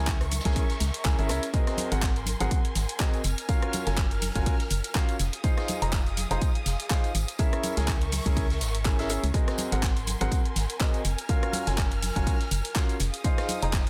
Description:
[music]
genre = piano house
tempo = 123 BPM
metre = 4/4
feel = swing 56% on 16ths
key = Ab mixolydian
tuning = A4 = 440 Hz
[part]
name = dark symphonic violin section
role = sustained chords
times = 0.0-13.9 s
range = Ab4 to F6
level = -41 LUFS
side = equal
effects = sidechain pumping
[part]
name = warm grand piano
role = riff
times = 0.0-13.8 s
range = C4 to Bb5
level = -35 LUFS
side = equal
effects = sidechain pumping, tape echo
[part]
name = organ-like FM bass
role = bass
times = 0.0-13.9 s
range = F1 to Db2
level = -31 LUFS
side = equal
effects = tube saturation, sidechain pumping
[part]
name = electronic kick drum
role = drums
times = 0.1-13.8 s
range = none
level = -28 LUFS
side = equal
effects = studio ambience
[part]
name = garage drum kit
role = drums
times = 0.1-13.9 s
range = handclaps, hi-hat, rim click, shaker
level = -36 LUFS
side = equal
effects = overdrive, studio ambience
[part]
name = soft-mallet drum kit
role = drums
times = 0.1-13.9 s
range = hi-hat, ride cymbal, snare drum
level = -46 LUFS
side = equal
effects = none
[part]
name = tambourine and congas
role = percussion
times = 0.1-13.9 s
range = none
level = -42 LUFS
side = equal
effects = none
[sound]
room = small room reverb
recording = dense, heavily limited modern master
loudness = -27 LUFS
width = mono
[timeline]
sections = 0.0-13.9 A section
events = none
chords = 0.0 Dbm6; 1.5 Ab9; 3.2 Gbmaj7; 5.2 Fm7; 7.4 Dbm6; 9.3 Ab9; 11.0 Gbmaj7; 13.0 Fm7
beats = 0.07 0.56 1.05 | 1.54 2.02 2.51 3.00 | 3.49 3.98 4.46 4.95 | 5.44 5.93 6.42 6.90 | 7.39 7.88 8.37 8.85 | 9.34 9.83 10.32 10.80 | 11.29 11.78 12.27 12.76 | 13.24 13.73

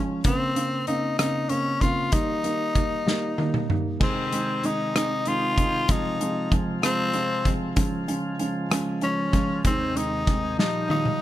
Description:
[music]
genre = six-eight pop ballad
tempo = 64 BPM (dotted quarters)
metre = 6/8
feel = straight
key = Ab major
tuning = A4 = 440 Hz
[part]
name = raspy tenor saxophone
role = melody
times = 0.0-11.2 s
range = C4 to F4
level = -27 LUFS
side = left 3 dB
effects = ping-pong delay
[part]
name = felt-muted upright piano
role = accompaniment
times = 0.0-11.2 s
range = Db3 to Eb4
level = -27 LUFS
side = right 2 dB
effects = none
[part]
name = loose indie drum kit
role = drums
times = 0.2-11.2 s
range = crash cymbal, hi-hat, kick drum, rim click, snare drum, toms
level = -25 LUFS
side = equal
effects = none
[part]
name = bright tonewheel organ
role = sustained chords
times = 4.0-11.2 s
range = Eb2 to F4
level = -33 LUFS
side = equal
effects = slow rotary speaker
[sound]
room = small room reverb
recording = none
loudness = -22 LUFS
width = side -13 dB against mid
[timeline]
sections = 0.0-11.2 A section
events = drum fill 3.1-4.0, 10.6-11.2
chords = 0.2 Bbmadd9; 2.1 Eb; 4.0 Ab; 5.9 Fm; 7.8 Db; 9.6 Ab/Eb; 10.6 Ebadd9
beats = | 0.25 1.19 | 2.13 3.07 | 4.01 4.95 | 5.89 6.83 | 7.77 8.71 | 9.65 10.59

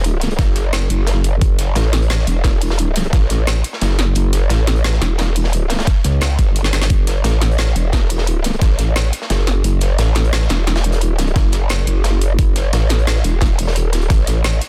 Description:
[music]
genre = dark technical drum and bass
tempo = 175 BPM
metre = 4/4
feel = straight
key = F# phrygian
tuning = A4 = 440 Hz
[part]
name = growl bass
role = bass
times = 0.0-14.6 s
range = E1 to C#2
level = -18 LUFS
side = equal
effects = chorus, tube saturation
[part]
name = crunchy breakbeat drum kit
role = drums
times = 0.0-14.7 s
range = hi-hat, snare drum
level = -29 LUFS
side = equal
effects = high-pass filter on hats, high-pass filter on snare, high-pass filter on room
[part]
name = drum and bass drum kit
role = drums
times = 0.0-14.7 s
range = hi-hat, snare drum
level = -25 LUFS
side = equal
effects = overdrive
[part]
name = electronic kick drum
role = drums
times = 0.4-3.2, 5.9-8.7, 11.4-14.2 s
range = none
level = -17 LUFS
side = equal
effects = overdrive
[sound]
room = studio reverb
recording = dense, heavily limited modern master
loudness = -16 LUFS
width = mono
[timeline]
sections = 0.0-14.7 A section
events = drum fill 6.6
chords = none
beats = | 0.04 0.39 0.73 1.07 | 1.42 1.76 2.10 2.44 | 2.79 3.13 3.47 3.81 | 4.16 4.50 4.84 5.19 | 5.53 5.87 6.21 6.56 | 6.90 7.24 7.59 7.93 | 8.27 8.62 8.96 9.30 | 9.64 9.99 10.33 10.67 | 11.02 11.36 11.70 12.04 | 12.39 12.73 13.07 13.41 | 13.76 14.10 14.44

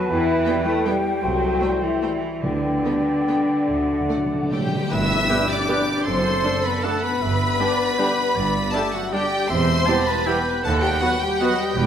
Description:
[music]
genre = classical, orchestral ballroom waltz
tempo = 136-173 BPM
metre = 3/4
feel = rubato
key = G major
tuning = A4 = 439 Hz
[part]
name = large flute ensemble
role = second line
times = 0.0-11.9 s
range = F#4 to G5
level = -28 LUFS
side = left 2 dB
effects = none
[part]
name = warm cor anglais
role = second line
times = 0.0-11.9 s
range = G4 to A5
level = -29 LUFS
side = right 2 dB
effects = none
[part]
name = dark bassoon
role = accompaniment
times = 0.0-4.7 s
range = A3 to B3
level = -32 LUFS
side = right 1 dB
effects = none
[part]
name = mellow French horn section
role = sustained chords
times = 0.0-11.9 s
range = F#3 to A4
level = -25 LUFS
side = left 2 dB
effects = none
[part]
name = rich studio cello section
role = bass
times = 0.0-11.9 s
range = D#2 to A3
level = -30 LUFS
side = right 2 dB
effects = none
[part]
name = rich studio double bass section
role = bass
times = 0.1-11.9 s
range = E1 to E2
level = -28 LUFS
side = right 3 dB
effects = none
[part]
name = rich studio violin section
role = melody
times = 0.5-11.9 s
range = F#5 to E6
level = -26 LUFS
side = left 1 dB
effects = none
[part]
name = rich studio violin section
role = second line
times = 0.5-11.9 s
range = F#4 to E5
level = -29 LUFS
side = left 1 dB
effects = none
[part]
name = rich studio viola section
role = accompaniment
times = 0.5-11.5 s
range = G3 to G4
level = -30 LUFS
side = right 1 dB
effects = none
[part]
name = warm trombone section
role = sustained chords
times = 0.5-11.5 s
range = A2 to D4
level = -33 LUFS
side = right 2 dB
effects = none
[part]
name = cymbal swell and tam-tam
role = percussion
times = 2.4-6.4 s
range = none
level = -36 LUFS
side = left 2 dB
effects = none
[part]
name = timpani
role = percussion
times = 2.4-4.9 s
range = D3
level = -29 LUFS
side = equal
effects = none
[part]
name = dark trumpet section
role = stabs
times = 5.3-11.5 s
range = G4 to B4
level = -31 LUFS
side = right 1 dB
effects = none
[sound]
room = wet scoring stage reverb, RT60 1.9 s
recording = none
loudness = -18 LUFS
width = side -9 dB against mid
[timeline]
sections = 0.0-4.9 A section; 4.9-11.9 B section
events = timpani fill 3.7-4.9; band accent 4.9-5.3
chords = 0.1 Em; 1.2 Am7/C; 2.4 G/D; 3.7 D; 4.9 G; 6.1 D7/F#; 7.2 G; 9.5 Em; 10.6 B/D#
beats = | 0.09 0.46 0.86 | 1.24 1.62 2.03 | 2.44 2.86 3.29 | 3.69 4.10 4.53 | 4.92 5.30 5.70 | 6.07 6.44 6.84 | 7.22 7.60 7.99 | 8.36 8.74 9.13 | 9.50 9.87 10.27 | 10.64 11.02 11.41 | 11.77

